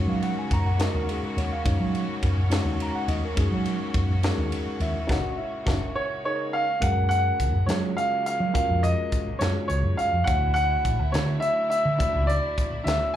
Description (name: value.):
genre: electric jazz fusion.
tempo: 70 BPM (dotted quarters).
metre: 6/8.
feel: straight.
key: F# major.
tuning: A4 = 440 Hz.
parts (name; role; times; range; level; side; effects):
mellow tine electric piano; accompaniment; 0.0-13.2 s; G#3 to A#5; -32 LUFS; left 2 dB; plate reverb, slapback echo.
clear studio string section; sustained chords; 0.0-13.2 s; C#3 to F#4; -36 LUFS; equal; plate reverb.
hollow-body short-scale fingered electric bass; bass; 0.0-13.0 s; F#1 to F#3; -25 LUFS; equal; none.
crisp fusion drum kit; drums; 0.2-13.0 s; hi-hat, kick drum, ride cymbal, snare drum; -29 LUFS; equal; none.
warm baby grand piano; melody; 6.0-13.2 s; C#5 to F#5; -25 LUFS; right 1 dB; slapback echo, plate reverb.
room: light reverb.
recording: live gig heard through the venue's PA, club reverb.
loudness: -22 LUFS.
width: side -11 dB against mid.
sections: 0.0-6.8 A section; 6.8-13.2 B section.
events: band accent 5.1-6.8; drum fill 6.0-6.8.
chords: 0.0 F#69; 6.8 F#maj9; 10.3 Dmaj9.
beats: 0.80 | 1.66 2.52 | 3.38 4.24 | 5.10 5.96 | 6.83 7.69 | 8.55 9.41 | 10.28 11.14 | 12.00 12.86.